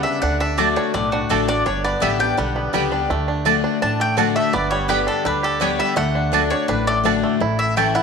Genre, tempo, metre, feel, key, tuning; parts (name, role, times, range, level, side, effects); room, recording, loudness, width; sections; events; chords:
bluegrass; 167 BPM; 4/4; straight; D major; A4 = 439 Hz
bluegrass banjo; melody; 0.0-8.0 s; G3 to G4; -23 LUFS; right 5 dB
mandolin; melody; 0.0-8.0 s; F#4 to A5; -22 LUFS; left 1 dB
picked steel-string acoustic guitar; accompaniment; 0.0-8.0 s; G2 to G4; -23 LUFS; left 10 dB
upright bass; bass; 0.0-7.9 s; G1 to D2; -26 LUFS; right 1 dB
mandolin; stabs; 0.6-7.9 s; A3 to A5; -25 LUFS; right 12 dB
moderate echo chamber reverb, RT60 2.8 s; 1960s-style stereo with parts hard left and right; -17 LUFS; side -5 dB against mid
0.0-8.0 A section
0.2 D; 1.7 G; 3.1 D; 4.5 G; 6.0 D; 7.4 A